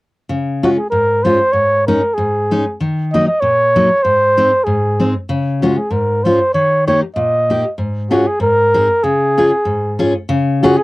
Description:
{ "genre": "alpine folk", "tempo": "96 BPM", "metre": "2/4", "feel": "swing 54% on 8ths", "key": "Db major", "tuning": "A4 = 440 Hz", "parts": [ { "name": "fingerpicked steel-string acoustic guitar", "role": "accompaniment", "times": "0.3-10.8 s", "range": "Ab2 to Ab4", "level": "-16 LUFS", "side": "left 1 dB", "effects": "none" }, { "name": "mellow flugelhorn", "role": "melody", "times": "0.6-10.8 s", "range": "Gb4 to Eb5", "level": "-13 LUFS", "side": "equal", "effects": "none" } ], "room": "light reverb", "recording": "dry, close 1970s-style studio recording", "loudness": "-12 LUFS", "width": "side -20 dB against mid", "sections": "0.3-10.3 A section", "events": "none", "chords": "0.3 Db; 1.5 Absus4; 2.8 Ebm; 4.0 Ab; 5.3 Db; 6.5 Eb; 7.8 Db/Ab; 8.4 Abadd9; 9.0 Db" }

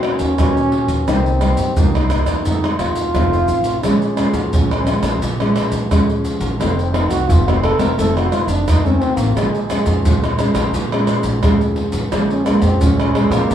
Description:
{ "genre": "samba and choro", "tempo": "87 BPM", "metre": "4/4", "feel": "straight", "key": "Bb minor", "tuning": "A4 = 440 Hz", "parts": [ { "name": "breathy trombone", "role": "second line", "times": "0.0-13.5 s", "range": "Ab3 to Bb4", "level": "-20 LUFS", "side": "right 2 dB", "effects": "none" }, { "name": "nylon-string guitar", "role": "accompaniment", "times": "0.0-13.5 s", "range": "F2 to Gb4", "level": "-19 LUFS", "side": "left 2 dB", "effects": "none" }, { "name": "pandeiro, tamborim, maracas and surdo", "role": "percussion", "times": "0.0-13.5 s", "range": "none", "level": "-19 LUFS", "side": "right 1 dB", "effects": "none" }, { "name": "upright bass", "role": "bass", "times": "0.2-13.5 s", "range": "Eb1 to Eb3", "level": "-20 LUFS", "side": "equal", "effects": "none" } ], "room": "moderate studio reverb, RT60 1.0 s", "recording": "small room reverb", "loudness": "-14 LUFS", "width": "side -10 dB against mid", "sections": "0.0-13.5 A section", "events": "trombone solo 0.0-13.5", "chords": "0.0 Ebm7; 1.1 Cm7; 2.5 F7; 3.8 Bbm7; 6.6 F7; 9.4 Bbm7" }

